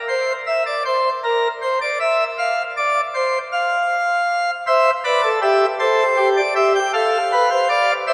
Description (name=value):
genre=classical, baroque-style 4-part fugue for pipe organ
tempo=52 BPM (dotted quarters)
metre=12/8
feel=straight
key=unclear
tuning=A4 = 440 Hz
part: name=pipe organ, plenum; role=solo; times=0.1-8.1 s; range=G4 to G5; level=-18 LUFS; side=equal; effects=none
room=wet cathedral reverb, RT60 4.2 s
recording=none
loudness=-18 LUFS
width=mono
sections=0.0-8.1 A section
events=none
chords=0.0 N.C.; 4.7 C; 6.9 Dm/A